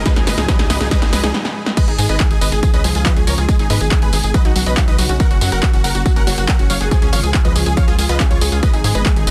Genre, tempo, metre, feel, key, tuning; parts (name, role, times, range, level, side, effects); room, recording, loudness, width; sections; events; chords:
uplifting trance; 140 BPM; 4/4; straight; A4 = 441 Hz
big supersaw lead; melody; 0.0-9.3 s; E#4 to F#5; -25 LUFS; equal; cassette tape, sidechain pumping, tape echo
lush unison pad; sustained chords; 0.0-9.3 s; G#2 to A#4; -29 LUFS; equal; chorus, sidechain pumping
tight sequencer bass; bass; 0.0-9.3 s; F#1 to G#2; -21 LUFS; equal; sidechain pumping
riser; sound effects; 0.0-1.3 s; -32 LUFS; equal
unison pluck; arpeggios; 0.1-9.3 s; E#3 to C#5; -29 LUFS; equal; sidechain pumping, tape echo
electronic kick drum; drums; 0.1-9.1 s; -17 LUFS; equal; overdrive
punchy analog drum machine; drums; 0.1-9.3 s; crash cymbal, handclaps, hi-hat, snare drum, tambourine; -24 LUFS; equal; sidechain pumping on hats, sidechain pumping on perc, sidechain pumping on cymbals
little or no reverb; dense, heavily limited modern master; -15 LUFS; mono
0.0-1.8 A section; 1.8-9.3 B section
build-up 0.0-1.8; drum fill 0.0-1.3, 1.3-1.8; stop 1.3-1.8; drop 1.8-9.3
0.1 C#; 1.8 G#m; 2.6 C#; 3.5 G#m; 4.3 Badd9; 5.2 F#; 6.9 C#; 8.6 G#m